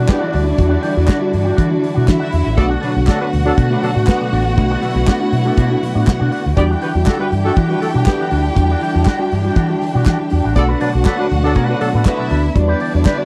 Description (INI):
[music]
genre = disco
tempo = 120 BPM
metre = 4/4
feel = straight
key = E minor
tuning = A4 = 440 Hz
[part]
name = rich studio violin section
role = second line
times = 0.0-13.2 s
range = D4 to G5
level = -25 LUFS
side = equal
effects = none
[part]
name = electric guitar with an envelope filter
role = accompaniment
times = 0.0-13.2 s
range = G3 to D5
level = -28 LUFS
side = equal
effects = none
[part]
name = tine electric piano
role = accompaniment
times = 0.0-13.2 s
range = B2 to F#4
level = -23 LUFS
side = equal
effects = lush chorus
[part]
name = dark studio string section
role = sustained chords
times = 0.0-13.2 s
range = D3 to F#4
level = -25 LUFS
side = equal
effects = none
[part]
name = vintage muted fingered electric bass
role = bass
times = 0.0-13.0 s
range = A1 to E3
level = -19 LUFS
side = equal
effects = none
[part]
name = mellow horn section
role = stabs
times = 0.1-12.3 s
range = D3 to D5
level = -24 LUFS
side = equal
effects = none
[part]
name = damped 70s drum kit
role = drums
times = 0.1-13.2 s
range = hi-hat, kick drum, snare drum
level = -16 LUFS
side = equal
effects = none
[part]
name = group handclap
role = percussion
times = 0.1-13.2 s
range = none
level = -32 LUFS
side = equal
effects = none
[sound]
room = little or no reverb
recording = dry, close 1970s-style studio recording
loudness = -16 LUFS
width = mono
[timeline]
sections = 0.0-13.2 A section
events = none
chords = 0.0 Em9; 2.6 Bm7; 6.6 Em9; 10.6 Bm7; 12.6 Em7